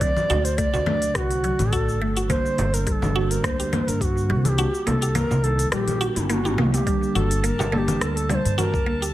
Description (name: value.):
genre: organic downtempo.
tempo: 105 BPM.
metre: 4/4.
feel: swing 54% on 16ths.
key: G harmonic minor.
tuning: A4 = 440 Hz.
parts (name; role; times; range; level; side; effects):
breathy low Native American-style wooden flute; melody; 0.0-9.0 s; F#4 to D5; -26 LUFS; equal; tape echo.
bell-like tine electric piano; accompaniment; 0.0-9.1 s; D3 to Eb4; -30 LUFS; right 2 dB; analog chorus, sidechain pumping, tape echo.
mallet-like synth pluck; arpeggios; 0.0-9.1 s; F#3 to G4; -27 LUFS; equal; chorus, tape echo.
upright bass; bass; 0.0-9.1 s; G1 to G2; -25 LUFS; equal; sidechain pumping.
electronic kick drum; drums; 0.0-8.8 s; none; -26 LUFS; equal; none.
organic electronic drum kit; drums; 0.0-9.1 s; congas, hi-hat, rim click, shaker, toms; -28 LUFS; left 2 dB; none.
frame drum; percussion; 0.3-8.4 s; none; -31 LUFS; right 2 dB; none.
drifting glass-harmonics texture; texture; 7.0-9.1 s; A5; -37 LUFS; right 2 dB; chorus, built-in reverb.
room: light reverb, digital ambience.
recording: none.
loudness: -20 LUFS.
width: side -14 dB against mid.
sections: 0.0-6.9 A section; 6.9-9.1 A section.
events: kick drops out 4.6-6.9; drum fill 5.7-6.9.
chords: 0.0 D7; 2.3 Gm; 4.6 Cm7; 6.9 Gm.